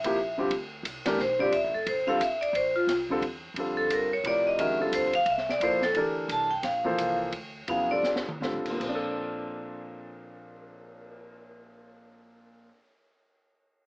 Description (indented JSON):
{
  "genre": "modal jazz",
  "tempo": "149-177 BPM",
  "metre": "3/4",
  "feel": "swing 62% on 8ths",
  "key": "Bb lydian",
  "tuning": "A4 = 440 Hz",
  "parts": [
    { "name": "vibraphone with medium hard mallets", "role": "melody", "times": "0.0-8.0 s", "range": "F4 to A5", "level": "-25 LUFS", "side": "equal", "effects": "none" },
    { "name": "warm baby grand piano", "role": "accompaniment", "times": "0.0-12.8 s", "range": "Bb2 to C5", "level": "-30 LUFS", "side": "equal", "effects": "none" },
    { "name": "upright bass", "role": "bass", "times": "0.0-12.7 s", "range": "F1 to A2", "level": "-45 LUFS", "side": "equal", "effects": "none" },
    { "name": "open jazz drum kit", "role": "drums", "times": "0.0-11.1 s", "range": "crash cymbal, cymbal swell, hi-hat, kick drum, ride cymbal, snare drum, toms", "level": "-37 LUFS", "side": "equal", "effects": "none" }
  ],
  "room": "light reverb",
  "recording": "AM radio sound",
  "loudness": "-25 LUFS",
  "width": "side -26 dB against mid",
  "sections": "0.5-8.8 A section; 8.8-11.2 B section",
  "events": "vibraphone solo 0.5-8.8; slowing down 6.6-8.8; drum fill 8.0-8.4",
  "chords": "0.0 Bbadd9; 0.5 Bbmaj9"
}